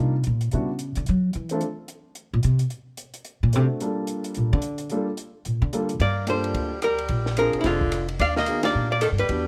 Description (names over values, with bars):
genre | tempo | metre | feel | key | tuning
jazz, small-group swing and bop | 219 BPM | 4/4 | swing 60% on 8ths | G minor | A4 = 437 Hz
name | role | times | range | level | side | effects
warm concert grand piano | accompaniment | 0.0-9.5 s | G3 to A4 | -31 LUFS | equal | none
upright bass | bass | 0.0-9.5 s | F1 to F#3 | -26 LUFS | equal | none
compact cocktail drum kit | drums | 0.2-9.4 s | hi-hat, kick drum, ride cymbal, rim click, snare drum | -36 LUFS | equal | none
archtop guitar, miked and amplified | melody | 6.0-9.4 s | E4 to F5 | -27 LUFS | equal | none
edgy tenor saxophone | second line | 6.0-9.4 s | C3 to D4 | -32 LUFS | equal | none
room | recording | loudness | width
light reverb | close, detailed microphones | -24 LUFS | mono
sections
0.0-6.0 A section; 6.0-9.5 B section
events
upright bass solo 0.0-6.0; band accent 8.6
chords
0.0 Ebmaj7; 0.5 Em7; 1.1 A5; 1.6 Bbsus2; 2.7 N.C.; 3.3 D7; 3.8 Gm7; 7.1 Bb7; 8.2 Ebmaj7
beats
0.25 | 0.53 0.80 1.07 1.35 | 1.62 1.90 2.17 2.44 | 2.72 2.99 3.27 3.54 | 3.81 4.09 4.36 4.63 | 4.91 5.18 5.46 5.73 | 6.00 6.28 6.55 6.83 | 7.10 7.38 7.65 7.92 | 8.20 8.47 8.75 9.02 | 9.30